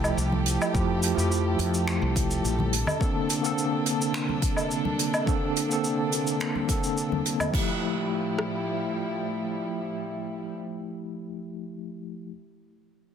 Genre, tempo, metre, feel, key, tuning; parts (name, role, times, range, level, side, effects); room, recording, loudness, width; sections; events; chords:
sunset chillout; 106 BPM; 4/4; straight; F major; A4 = 439 Hz
bell-like tine electric piano; accompaniment; 0.0-12.3 s; D3 to A4; -28 LUFS; moving between left 4 dB and right 4 dB; medium stereo tremolo, auto-pan, ping-pong delay
dark chamber string section; sustained chords; 0.0-10.6 s; A2 to A4; -32 LUFS; right 1 dB
woody fretless electric bass; bass; 0.0-2.8 s; Bb1 to F2; -27 LUFS; equal
jazz brush drum kit; drums; 0.0-7.7 s; cabasa, crash cymbal, finger snaps, hi-hat, woodblock; -31 LUFS; right 2 dB
congas; percussion; 0.3-7.5 s; -35 LUFS; left 4 dB
deep house drum kit; drums; 0.7-8.5 s; kick drum, rim click; -28 LUFS; equal; overdrive
moderate plate reverb, RT60 3.2 s; dense, heavily limited modern master; -24 LUFS; side -8 dB against mid
0.0-7.5 A section; 7.5-9.8 B section
0.0 Fmaj9; 2.7 Bbmaj9; 7.5 Fmaj9